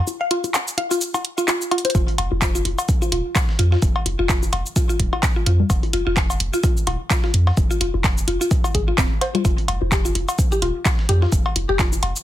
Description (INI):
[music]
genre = minimal techno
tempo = 128 BPM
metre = 4/4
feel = swing 57% on 16ths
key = F minor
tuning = A4 = 440 Hz
[part]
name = garage drum kit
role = drums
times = 0.1-12.2 s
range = cabasa, handclaps, hi-hat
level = -24 LUFS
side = equal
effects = soft clipping on snare
[part]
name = congas and cowbell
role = percussion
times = 0.1-12.1 s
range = none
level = -27 LUFS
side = left 5 dB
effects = tape echo
[part]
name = mallet-like synth pluck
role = riff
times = 0.2-11.8 s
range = C4 to F5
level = -24 LUFS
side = left 1 dB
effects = chorus, sidechain pumping, dub echo
[part]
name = punchy sub bass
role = bass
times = 1.9-12.1 s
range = Eb1 to F2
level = -21 LUFS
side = equal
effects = sidechain pumping
[part]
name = dusty soul sampler-style drum kit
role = drums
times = 1.9-12.2 s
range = hi-hat, snare drum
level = -34 LUFS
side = right 2 dB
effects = none
[part]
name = electronic kick drum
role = drums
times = 1.9-11.9 s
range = none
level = -20 LUFS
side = equal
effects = overdrive
[sound]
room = little or no reverb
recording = dense, heavily limited modern master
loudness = -17 LUFS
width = side -13 dB against mid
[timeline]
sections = 0.0-12.2 A section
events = break 0.1-1.9; drum fill 1.7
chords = none